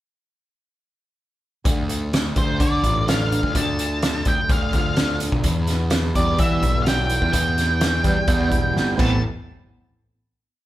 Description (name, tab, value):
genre	quiet-loud alternative rock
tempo	127 BPM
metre	4/4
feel	straight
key	unclear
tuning	A4 = 440 Hz
part	fingerpicked steel-string acoustic guitar	arpeggios	1.6-9.2 s	E2 to F4	-27 LUFS	right 2 dB	none
part	fuzz picked electric bass	bass	1.7-9.2 s	E1 to E3	-23 LUFS	equal	overdrive
part	loose indie drum kit	drums	1.7-9.1 s	crash cymbal, hi-hat, kick drum, snare drum	-22 LUFS	equal	none
part	octave-fuzz lead guitar	melody	2.4-9.2 s	C5 to A5	-24 LUFS	equal	distortion
room	light reverb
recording	band playing live in one room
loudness	-18 LUFS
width	side -14 dB against mid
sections	1.7-9.2 pre-chorus; 9.2-10.7 final hit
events	drum fill 8.8-9.2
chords	1.7 Dm; 5.4 Em; 9.0 Amadd9; 9.2 N.C.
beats	| 1.65 2.12 2.60 3.07 | 3.54 4.02 4.49 4.96 | 5.44 5.91 6.38 6.86 | 7.33 7.81 8.28 8.75